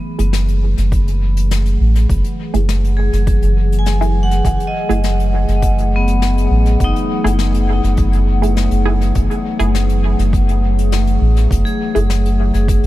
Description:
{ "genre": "ambient dub", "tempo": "102 BPM", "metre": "4/4", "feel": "straight", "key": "F# dorian", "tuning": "A4 = 441 Hz", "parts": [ { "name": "warbly tape-like pad", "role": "sustained chords", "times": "0.0-12.9 s", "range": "E3 to F#5", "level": "-21 LUFS", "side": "left 1 dB", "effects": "chorus, built-in reverb, vintage 12-bit sampler grit" }, { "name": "filtered dub chord stab", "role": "stabs", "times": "0.2-12.1 s", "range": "A3 to G#4", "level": "-25 LUFS", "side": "right 2 dB", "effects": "phaser, dub echo" }, { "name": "soft dub sub bass", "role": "bass", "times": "0.2-12.9 s", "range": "F#1 to A1", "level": "-14 LUFS", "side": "equal", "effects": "tube saturation" }, { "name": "soft brush drum kit", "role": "drums", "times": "0.2-12.9 s", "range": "hi-hat, snare drum", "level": "-29 LUFS", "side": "left 7 dB", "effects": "dub echo" }, { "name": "electronic kick drum", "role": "drums", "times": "0.9-12.8 s", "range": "none", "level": "-19 LUFS", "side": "equal", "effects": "overdrive" }, { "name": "vibraphone with hard mallets", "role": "arpeggios", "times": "3.0-12.9 s", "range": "B3 to G#5", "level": "-25 LUFS", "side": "left 2 dB", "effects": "dub echo" } ], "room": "small room ambience", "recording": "none", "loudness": "-13 LUFS", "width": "side -16 dB against mid", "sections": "0.0-12.9 A section", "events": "none", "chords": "0.0 F#m9" }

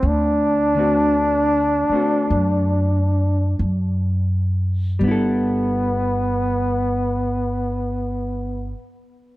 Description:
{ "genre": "jazz ballad", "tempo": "40-56 BPM", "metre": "4/4", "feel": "swing 66% on 8ths", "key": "G major", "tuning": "A4 = 440 Hz", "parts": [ { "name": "clear trombone", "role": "melody", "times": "0.0-8.7 s", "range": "B3 to D4", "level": "-20 LUFS", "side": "equal", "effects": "none" }, { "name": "hollow-body jazz guitar", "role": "accompaniment", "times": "0.0-8.9 s", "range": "D3 to A4", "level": "-25 LUFS", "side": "left 2 dB", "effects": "none" }, { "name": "upright bass", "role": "bass", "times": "0.0-8.7 s", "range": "G1 to F#2", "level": "-21 LUFS", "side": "equal", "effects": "none" } ], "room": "light reverb", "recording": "heard from further back in the room", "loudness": "-18 LUFS", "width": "side -17 dB against mid", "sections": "0.0-5.0 A section; 5.0-9.4 B section", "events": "slowing down 0.0-5.0", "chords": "0.0 D7; 5.0 G69" }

